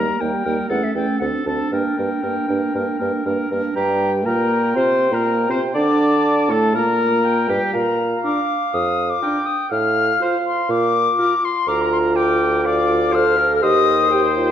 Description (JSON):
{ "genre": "quick classical-period movement for wind quintet", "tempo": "122 BPM", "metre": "4/4", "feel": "straight", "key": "G minor", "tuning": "A4 = 440 Hz", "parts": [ { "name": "silver concert flute", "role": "melody", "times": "0.0-14.3 s", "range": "E5 to F6", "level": "-21 LUFS", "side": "left 7 dB", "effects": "none" }, { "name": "clear oboe", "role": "second line", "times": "0.0-14.5 s", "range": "G4 to D5", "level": "-25 LUFS", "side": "left 2 dB", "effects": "none" }, { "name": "mellow French horn", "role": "accompaniment", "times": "0.0-14.5 s", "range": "G3 to A4", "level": "-23 LUFS", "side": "right 1 dB", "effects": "none" }, { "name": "warm clarinet", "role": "accompaniment", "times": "0.0-14.5 s", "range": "Bb3 to Bb5", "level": "-25 LUFS", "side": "right 6 dB", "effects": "none" }, { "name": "mellow bassoon", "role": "bass", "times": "0.0-14.5 s", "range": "D2 to D3", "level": "-21 LUFS", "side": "right 2 dB", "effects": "none" } ], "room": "wet recital hall reverb, RT60 1.5 s", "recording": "worn, warbling old tape, cassette tape, warbly pitch drift", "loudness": "-16 LUFS", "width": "side -9 dB against mid", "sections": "0.0-3.8 A section; 3.8-14.5 B section", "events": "none", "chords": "0.0 Eb; 0.7 A7/E; 1.2 D7(no3); 1.7 Gm; 5.7 D5; 6.7 Gm/Bb; 7.7 Bb; 9.7 F/A; 10.7 Bb; 11.7 Bb/D; 13.6 Cm/Eb", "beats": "0.20 0.70 1.20 | 1.71 2.22 2.73 3.25 | 3.76 4.25 4.75 5.25 | 5.75 6.25 6.75 7.24 | 7.74 8.24 8.73 9.22 | 9.71 10.20 10.69 11.18 | 11.67 12.16 12.65 13.13 | 13.62 14.11" }